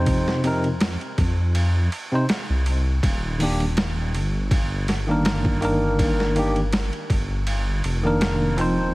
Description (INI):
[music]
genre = trip hop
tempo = 81 BPM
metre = 4/4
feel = swing 54% on 16ths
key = unclear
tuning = A4 = 440 Hz
[part]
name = bell-like tine electric piano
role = accompaniment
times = 0.0-8.9 s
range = C3 to C5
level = -23 LUFS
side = equal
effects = harmonic tremolo, tape echo
[part]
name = dark detuned saw bass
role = bass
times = 0.0-8.9 s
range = Eb1 to F2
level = -23 LUFS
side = equal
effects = none
[part]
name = boom bap sampler-style drum kit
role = drums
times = 0.1-8.8 s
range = hi-hat, kick drum, ride cymbal, snare drum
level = -25 LUFS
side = equal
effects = overdrive
[sound]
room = little or no reverb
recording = heavily compressed radio sound, vinyl crackle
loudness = -20 LUFS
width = side -21 dB against mid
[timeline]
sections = 0.0-8.9 A section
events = none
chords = 0.0 Cm; 3.0 Ebmaj7